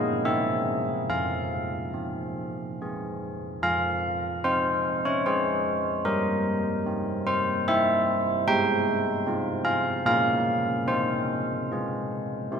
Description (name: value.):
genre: classical, tune for church bells.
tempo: 74 BPM.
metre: 3/4.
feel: straight.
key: F minor.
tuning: A4 = 440 Hz.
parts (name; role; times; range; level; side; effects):
carillon bells; solo; 0.0-12.6 s; F3 to G5; -24 LUFS; equal; none.
room: wet cathedral reverb, RT60 4.5 s.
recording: none.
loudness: -24 LUFS.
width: side -6 dB against mid.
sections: 0.0-3.6 A section; 3.6-12.6 B section.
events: none.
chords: 0.3 C7; 1.1 Fm; 6.1 C7/G; 8.5 Fm/Ab; 10.1 Bbm; 10.9 Fm/C.